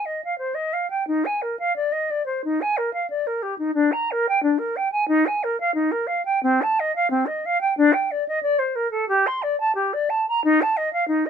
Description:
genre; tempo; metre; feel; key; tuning
classical, baroque-style fantasia for unaccompanied flute; 90 BPM; 4/4; rubato; G minor from 6.4 s; A4 = 440 Hz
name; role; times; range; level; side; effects
silver concert flute; solo; 0.0-11.3 s; C4 to C6; -20 LUFS; equal; none
room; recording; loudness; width
little or no reverb; close, detailed microphones; -20 LUFS; side -7 dB against mid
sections
0.0-11.3 A section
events
none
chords
none

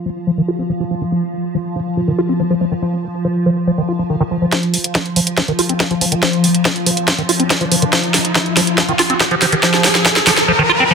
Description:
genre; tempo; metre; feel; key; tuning
psychedelic trance; 141 BPM; 4/4; straight; unclear; A4 = 438 Hz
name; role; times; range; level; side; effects
evolving wavetable pad; sustained chords; 0.0-10.5 s; F3; -20 LUFS; left 1 dB; ensemble chorus, built-in reverb, phaser, sidechain pumping
liquid acid bass; riff; 0.1-10.9 s; Eb3 to F4; -17 LUFS; moving between left 3 dB and right 3 dB; phaser, auto-pan, cassette tape, sidechain pumping, tape echo
electronic kick drum; drums; 4.5-10.1 s; none; -16 LUFS; equal; overdrive, high-pass filter on kick
garage drum kit; drums; 4.5-10.5 s; hi-hat, snare drum; -16 LUFS; right 1 dB; overdrive, high-pass filter on hats, high-pass filter on snare, high-pass filter on cymbals
riser; sound effects; 6.6-10.9 s; none; -21 LUFS; equal; none
room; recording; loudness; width
moderate digital room reverb, RT60 1.0 s; none; -13 LUFS; side -5 dB against mid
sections
0.0-4.5 A section; 4.5-10.9 B section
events
filter sweep on ambient pad 0.0-4.5; build-up 4.5-10.9; drum fill 4.5-10.5; filter sweep on acid bass 4.5-10.9; riser 6.6-10.9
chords
0.0 F5

